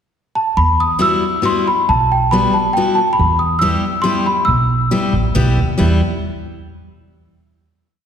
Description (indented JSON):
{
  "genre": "musette waltz",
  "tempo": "137 BPM",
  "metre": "3/4",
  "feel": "rubato",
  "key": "E harmonic minor",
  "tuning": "A4 = 440 Hz",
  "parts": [
    { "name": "worn celesta", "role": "melody", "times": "0.4-5.3 s", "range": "G5 to E6", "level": "-16 LUFS", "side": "equal", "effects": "analog delay" },
    { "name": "upright bass", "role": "bass", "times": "0.6-6.0 s", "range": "A1 to E2", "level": "-18 LUFS", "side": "right 1 dB", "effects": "none" },
    { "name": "picked steel-string acoustic guitar", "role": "accompaniment", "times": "1.0-6.0 s", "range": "G3 to G4", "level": "-19 LUFS", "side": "left 2 dB", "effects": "none" }
  ],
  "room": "wet scoring stage reverb, RT60 1.8 s",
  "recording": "heard from further back in the room",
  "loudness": "-13 LUFS",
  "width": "side -8 dB against mid",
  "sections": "0.0-0.6 pickup bar; 0.6-5.8 A section; 5.8-7.1 final chord",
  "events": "none",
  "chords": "0.0 N.C.; 0.6 Emadd9; 3.2 Em"
}